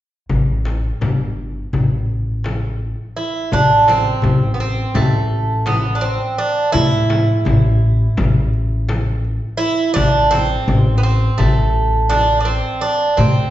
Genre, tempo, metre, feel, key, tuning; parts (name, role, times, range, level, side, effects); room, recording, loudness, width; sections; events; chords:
Turkish makam ensemble; 168 BPM (eighths); 9/8; straight; A makam nihavent; A4 = 440 Hz
upright bass; bass; 0.3-13.5 s; G1 to A2; -18 LUFS; equal
darbuka; percussion; 0.3-13.4 s; -21 LUFS; left 2 dB
frame drum; percussion; 0.3-13.4 s; -24 LUFS; left 2 dB
Greek bouzouki; melody; 3.2-13.5 s; A3 to E4; -17 LUFS; right 2 dB
wet recital hall reverb, RT60 1.4 s; recorded in a church or concert hall, nothing above 7.6 kHz; -14 LUFS; side -13 dB against mid
0.3-3.5 A section; 3.5-13.5 B section